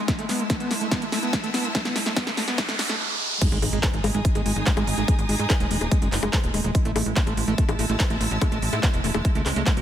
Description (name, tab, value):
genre	psychedelic trance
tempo	144 BPM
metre	4/4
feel	straight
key	G# phrygian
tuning	A4 = 440 Hz
part	pulsing gated texture	sustained chords	0.0-9.8 s	G#3	-33 LUFS	right 4 dB	chorus, built-in reverb, sidechain pumping
part	riser, noise sweep and impact	sound effects	0.0-5.1 s	none	-30 LUFS	right 1 dB	none
part	rich symphonic string section	texture	0.0-9.8 s	D#4 to E6	-33 LUFS	equal	sidechain pumping
part	screaming distorted acid line	riff	0.1-9.7 s	G#3 to B3	-30 LUFS	equal	distortion, chorus, auto-pan, sidechain pumping, dub echo
part	big-room dance drum kit	drums	0.1-9.8 s	bongos, crash cymbal, handclaps, hi-hat, snare drum	-28 LUFS	left 1 dB	overdrive
part	electronic kick drum	drums	0.1-9.7 s	none	-23 LUFS	equal	none
part	tight sequencer bass	bass	3.5-9.8 s	D#1 to A2	-27 LUFS	equal	none
room	light reverb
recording	high-pass filter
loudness	-21 LUFS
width	side -10 dB against mid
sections	0.0-3.4 A section; 3.4-9.8 B section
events	build-up 0.0-3.4; drum fill 0.0-3.0; riser 0.0-3.4; filter sweep on acid bass 0.0-3.4; filter sweep 0.0-3.4; noise sweep 1.7-3.4; drop 3.4-9.8; impact 3.4-5.1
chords	0.1 A5; 3.4 G#5; 6.7 A5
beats	| 0.08 0.50 0.92 1.33 | 1.75 2.17 2.58 3.00 | 3.42 3.83 4.25 4.67 | 5.08 5.50 5.92 6.33 | 6.75 7.17 7.58 8.00 | 8.41 8.83 9.25 9.66